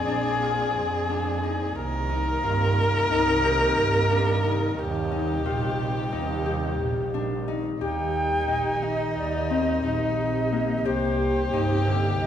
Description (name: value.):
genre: contemporary instrumental, chamber music in an uneven meter.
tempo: 178 BPM (eighths).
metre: 9/8.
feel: straight.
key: Eb major.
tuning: A4 = 445 Hz.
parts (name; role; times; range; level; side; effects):
bright reedy concert flute; melody; 0.0-0.8, 7.8-12.3 s; C5 to G5; -29 LUFS; equal; none.
warm erhu; second line; 0.0-12.3 s; Eb4 to Bb4; -27 LUFS; left 1 dB; none.
dark symphonic string section; sustained chords; 0.0-12.3 s; Bb2 to D5; -34 LUFS; right 1 dB; none.
Celtic harp; arpeggios; 0.0-12.3 s; D3 to G4; -29 LUFS; left 4 dB; none.
dark double bass; bass; 0.0-12.3 s; Bb1 to G2; -28 LUFS; right 3 dB; none.
room: wet recital hall reverb, RT60 1.5 s.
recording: recorded in a church or concert hall.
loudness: -22 LUFS.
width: side -9 dB against mid.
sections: 0.0-7.8 A section; 7.8-12.3 B section.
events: none.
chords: 0.0 Bb7; 1.8 Cm7; 4.8 Eb6; 7.8 Eb; 10.9 Cm7.